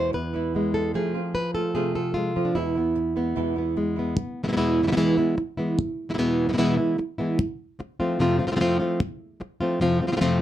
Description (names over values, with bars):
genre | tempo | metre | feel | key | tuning
flamenco | 149 BPM | 4/4 | straight | unclear | A4 = 439 Hz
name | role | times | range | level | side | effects
flamenco guitar | melody | 0.0-10.4 s | E2 to C5 | -22 LUFS | equal | none
flamenco guitar | stabs | 0.0-4.2 s | E2 to F4 | -31 LUFS | right 5 dB | none
room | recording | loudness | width
moderate small room ambience, RT60 0.5 s | dark, warm production | -22 LUFS | side -12 dB against mid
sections
0.0-4.2 A section; 4.2-10.4 B section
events
none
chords
0.0 E; 0.9 F; 2.6 E; 7.4 F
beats
0.14 0.54 | 0.95 1.35 1.75 2.16 | 2.56 2.96 3.37 3.77 | 4.17 4.57 4.97 5.38 | 5.78 6.18 6.58 6.98 | 7.39 7.79 8.19 8.59 | 8.99 9.40 9.80 10.20